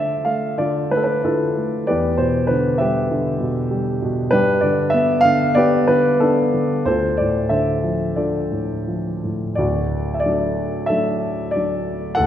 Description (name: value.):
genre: classical, lyrical solo piano.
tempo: 82-99 BPM.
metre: 4/4.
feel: rubato.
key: D dorian.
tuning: A4 = 440 Hz.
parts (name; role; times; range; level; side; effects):
dark grand piano; solo; 0.0-12.3 s; D1 to F#5; -17 LUFS; equal; none.
room: moderate concert hall reverb, RT60 1.8 s.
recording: recorded in a church or concert hall.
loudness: -17 LUFS.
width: side -10 dB against mid.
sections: 0.0-9.6 A section; 9.6-12.3 B section.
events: none.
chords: 0.0 Dmadd9; 1.9 Em7; 4.3 G; 6.9 Dm7; 9.6 D.